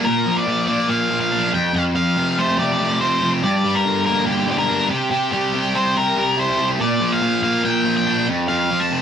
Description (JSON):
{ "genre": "rock", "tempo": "142 BPM", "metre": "4/4", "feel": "straight", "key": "unclear", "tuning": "A4 = 440 Hz", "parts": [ { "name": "octave-fuzz lead guitar", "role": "melody", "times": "0.0-9.0 s", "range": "G4 to A5", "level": "-20 LUFS", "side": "left 1 dB", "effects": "distortion" }, { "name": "distorted electric guitar", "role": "riff", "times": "0.0-9.0 s", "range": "F2 to E4", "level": "-19 LUFS", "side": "equal", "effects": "distortion" } ], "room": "moderate studio reverb, RT60 0.9 s", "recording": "band playing live in one room", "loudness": "-16 LUFS", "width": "side -8 dB against mid", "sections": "0.1-9.0 A section", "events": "none", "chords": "0.1 Bb; 1.5 F; 3.4 Gm; 4.9 C; 6.8 Bb; 8.3 F", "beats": "| 0.06 0.48 0.90 1.32 | 1.74 2.16 2.58 3.01 | 3.43 3.85 4.27 4.69 | 5.11 5.53 5.96 6.38 | 6.80 7.22 7.64 8.06 | 8.48 8.90" }